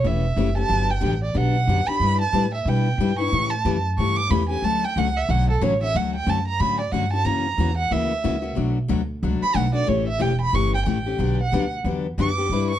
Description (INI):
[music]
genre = acoustic string swing (jazz manouche)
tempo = 183 BPM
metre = 4/4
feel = swing 60% on 8ths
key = D major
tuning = A4 = 440 Hz
[part]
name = warm violin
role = melody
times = 0.0-12.8 s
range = A4 to D6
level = -24 LUFS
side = right 3 dB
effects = none
[part]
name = picked steel-string acoustic guitar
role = accompaniment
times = 0.0-12.7 s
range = B2 to B4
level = -25 LUFS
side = left 6 dB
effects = none
[part]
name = upright bass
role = bass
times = 0.0-12.8 s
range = E1 to B2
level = -24 LUFS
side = right 1 dB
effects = none
[sound]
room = light reverb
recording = dark, warm production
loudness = -20 LUFS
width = side -11 dB against mid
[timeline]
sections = 0.0-6.0 A section; 6.0-12.8 A section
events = violin solo 0.0-12.8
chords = 0.0 A7; 0.7 Gmaj7; 2.0 Em7/G; 3.3 A7; 4.6 Dmaj7; 7.3 F#7; 8.6 Bm7; 9.9 A7; 11.2 Gmaj7